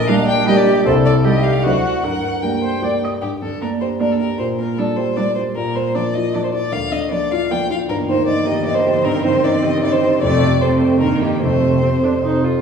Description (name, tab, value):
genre	quick classical-period movement for piano quartet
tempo	154 BPM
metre	3/4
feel	straight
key	G minor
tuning	A4 = 440 Hz
part	rich violin	melody	0.0-12.4 s	G4 to G5	-21 LUFS	left 1 dB	none
part	rich viola	accompaniment	0.0-12.6 s	A3 to Eb5	-23 LUFS	right 2 dB	none
part	warm grand piano	accompaniment	0.0-12.6 s	Bb1 to Eb5	-18 LUFS	left 1 dB	none
part	rich cello	second line	0.1-12.4 s	C3 to Bb3	-22 LUFS	right 4 dB	none
room	wet recital hall reverb, RT60 1.4 s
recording	heard from further back in the room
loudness	-15 LUFS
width	side -6 dB against mid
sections	0.0-3.2 A section; 3.2-12.6 B section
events	none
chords	0.0 Gm/Bb; 0.9 Am7b5/C; 1.6 D7; 2.0 Gm; 4.4 Gm/Bb; 5.6 Bb; 6.7 Bb/D; 7.9 Eb/G; 9.1 Cm/G; 10.2 F; 11.0 Eb/G; 11.4 F